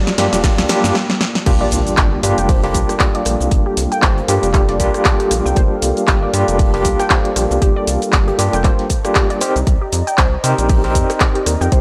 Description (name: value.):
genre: deep house.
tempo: 117 BPM.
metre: 4/4.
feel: swing 57% on 16ths.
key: G minor.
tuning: A4 = 440 Hz.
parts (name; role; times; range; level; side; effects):
dark analog pad; sustained chords; 0.0-11.8 s; A4 to Bb5; -30 LUFS; equal; none.
warbly dusty pluck; arpeggios; 0.0-11.8 s; F4 to G5; -27 LUFS; equal; chorus, sidechain pumping, analog delay.
overdriven tine electric piano; stabs; 0.0-11.8 s; G3 to C5; -21 LUFS; equal; fast tremolo, sidechain pumping, tape echo.
rubbery square bass; bass; 0.0-11.8 s; F1 to C3; -22 LUFS; equal; tube saturation, sidechain pumping.
riser and impact; sound effects; 0.0-3.5 s; none; -28 LUFS; equal; none.
deep dark ambient pad; texture; 0.3-1.0, 11.6-11.8 s; Bb3 to D6; -33 LUFS; equal; none.
damped 70s drum kit; drums; 0.1-11.8 s; hi-hat, snare drum; -39 LUFS; equal; none.
house drum kit; drums; 0.1-11.8 s; crash cymbal, handclaps, hi-hat, rim click, shaker, snare drum; -22 LUFS; equal; none.
electronic kick drum; drums; 0.4-11.8 s; none; -18 LUFS; equal; none.
room: light reverb, digital ambience.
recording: dry, gritty hardware recording, transformer saturation.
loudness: -15 LUFS.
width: mono.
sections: 0.0-1.5 A section; 1.5-11.8 B section.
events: build-up 0.0-1.5; drum fill 0.0-1.0, 1.0-1.5; stop 1.0-1.5; drop 1.5-11.8; impact 1.5-3.5.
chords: 0.0 Gm7; 1.2 N.C.; 1.5 Gm7; 9.4 Cm7.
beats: 0.44 0.95 | 1.46 1.98 2.49 3.00 | 3.52 4.03 4.54 5.05 | 5.57 6.08 6.59 7.11 | 7.62 8.13 8.64 9.16 | 9.67 10.18 10.70 11.21 | 11.72.